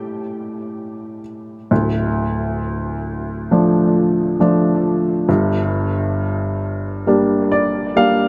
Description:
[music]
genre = pop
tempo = 67 BPM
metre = 4/4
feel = straight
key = D minor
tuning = A4 = 440 Hz
[part]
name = warm upright piano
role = solo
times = 0.0-8.3 s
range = D1 to A5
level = -19 LUFS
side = equal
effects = dub echo
[sound]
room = moderate plate reverb, RT60 2.5 s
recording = echo-heavy mix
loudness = -18 LUFS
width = mono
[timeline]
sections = 0.0-1.7 A section; 1.7-8.3 B section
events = upright piano solo 0.0-1.7; upright piano fill 7.1-8.3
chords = 0.0 A7; 1.7 Dm; 5.3 Gm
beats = 0.80 | 1.71 2.61 3.51 4.40 | 5.29 6.17 7.07 7.96

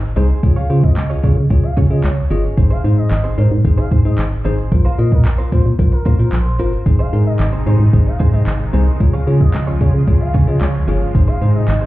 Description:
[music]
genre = dance-pop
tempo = 112 BPM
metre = 4/4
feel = straight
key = Ab major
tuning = A4 = 440 Hz
[part]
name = direct-recorded clean electric guitar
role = riff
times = 0.0-11.9 s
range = C4 to Db5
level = -29 LUFS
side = right 4 dB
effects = wide subtle chorus
[part]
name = organ-like FM bass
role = bass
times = 0.0-11.9 s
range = G1 to Db3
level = -14 LUFS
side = equal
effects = sidechain pumping
[part]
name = bell-like tine electric piano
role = accompaniment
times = 0.2-11.7 s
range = Eb4 to Eb5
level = -25 LUFS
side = left 6 dB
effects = sidechain pumping
[part]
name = smooth R&B drum kit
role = drums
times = 0.2-11.8 s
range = handclaps, hi-hat, kick drum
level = -16 LUFS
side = equal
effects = none
[part]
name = expressive portamento lead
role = melody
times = 0.6-11.8 s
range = Bb4 to F5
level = -29 LUFS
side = right 1 dB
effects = chorus, sidechain pumping, digital delay
[part]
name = group handclap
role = percussion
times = 1.0-11.8 s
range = none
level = -40 LUFS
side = right 3 dB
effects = none
[part]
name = lush unison pad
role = sustained chords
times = 6.9-11.9 s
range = C3 to F4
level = -23 LUFS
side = right 1 dB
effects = chorus, phaser, sidechain pumping
[sound]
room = digital ambience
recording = heard muffled through a wall, club reverb, EQ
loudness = -12 LUFS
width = side -17 dB against mid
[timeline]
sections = 0.0-11.9 A section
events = none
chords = 0.4 Db; 2.6 Ab; 4.7 Bbsus2; 6.9 Ab; 9.0 Db; 11.1 Ab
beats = | 0.43 0.97 1.50 2.04 | 2.58 3.11 3.65 4.18 | 4.72 5.25 5.79 6.33 | 6.86 7.40 7.93 8.47 | 9.00 9.54 10.08 10.61 | 11.15 11.68

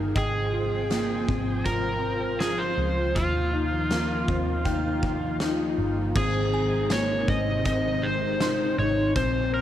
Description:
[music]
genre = dream pop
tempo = 80 BPM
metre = 4/4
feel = straight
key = Ab major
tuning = A4 = 440 Hz
[part]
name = string machine, violins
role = sustained chords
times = 0.0-9.6 s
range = Bb2 to G5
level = -31 LUFS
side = equal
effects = ensemble chorus
[part]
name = mellow electric guitar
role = arpeggios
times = 0.0-9.6 s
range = Bb3 to G5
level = -30 LUFS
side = left 3 dB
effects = ensemble chorus, dub echo
[part]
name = vintage muted picked electric bass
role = bass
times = 0.0-9.6 s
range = G1 to Eb2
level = -30 LUFS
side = equal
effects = none
[part]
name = overdriven slide guitar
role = melody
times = 0.2-9.6 s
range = F4 to Eb5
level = -28 LUFS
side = right 1 dB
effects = dub echo
[part]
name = oversized low-tuned drum kit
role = drums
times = 0.2-9.3 s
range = crash cymbal, hi-hat, kick drum, snare drum, tambourine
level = -31 LUFS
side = equal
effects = none
[part]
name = glassy synth bell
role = texture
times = 0.2-9.5 s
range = Eb5 to C6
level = -42 LUFS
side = equal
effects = chorus, phaser, dub echo
[sound]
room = light reverb, studio reverb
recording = echo-heavy mix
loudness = -23 LUFS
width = side -11 dB against mid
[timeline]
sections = 0.0-6.2 A section; 6.2-9.6 B section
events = none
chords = 0.2 Fmadd9/Ab; 3.2 Ebsus2; 6.2 Ab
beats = | 0.16 0.91 1.66 2.41 | 3.16 3.91 4.66 5.41 | 6.16 6.91 7.66 8.41 | 9.16

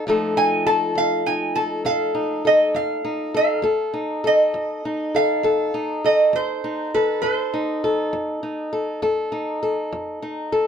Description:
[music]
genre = acoustic country blues, solo or duo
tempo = 67 BPM (dotted quarters)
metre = 12/8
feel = straight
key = F mixolydian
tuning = A4 = 435 Hz
[part]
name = fingerpicked old ladder-braced acoustic guitar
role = accompaniment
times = 0.0-10.7 s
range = F2 to A4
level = -22 LUFS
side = left 2 dB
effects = none
[part]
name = lap resonator guitar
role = melody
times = 0.4-8.1 s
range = B4 to A5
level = -20 LUFS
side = right 2 dB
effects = none
[sound]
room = light reverb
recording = close, detailed microphones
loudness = -19 LUFS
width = side -8 dB against mid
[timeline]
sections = 0.1-10.7 A section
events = none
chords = 0.1 F7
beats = | 0.06 0.95 1.85 2.75 | 3.65 4.54 5.44 6.34 | 7.24 8.13 9.03 9.93

